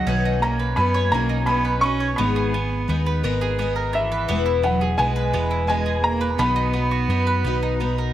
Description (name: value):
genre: indie folk with a building arrangement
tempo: 57 BPM (dotted quarters)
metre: 6/8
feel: straight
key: B major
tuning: A4 = 440 Hz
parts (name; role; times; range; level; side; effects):
- dark upright piano; melody; 0.0-8.1 s; E5 to C#6; -24 LUFS; equal; plate reverb, tape echo
- rich cello; second line; 0.0-8.1 s; E3 to C#4; -26 LUFS; right 4 dB; none
- picked twelve-string acoustic guitar; accompaniment; 0.0-8.1 s; G#2 to B4; -27 LUFS; left 8 dB; wide subtle chorus
- mandolin; arpeggios; 0.0-8.1 s; G#3 to C#5; -27 LUFS; right 5 dB; tape echo
- hollow-body short-scale fingered electric bass; bass; 0.0-8.1 s; E1 to F#2; -24 LUFS; equal; none
room: moderate studio reverb, RT60 0.7 s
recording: none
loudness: -19 LUFS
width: side -12 dB against mid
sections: 0.0-8.1 A section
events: none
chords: 0.1 Badd9; 2.2 G#madd9; 4.3 E; 6.4 B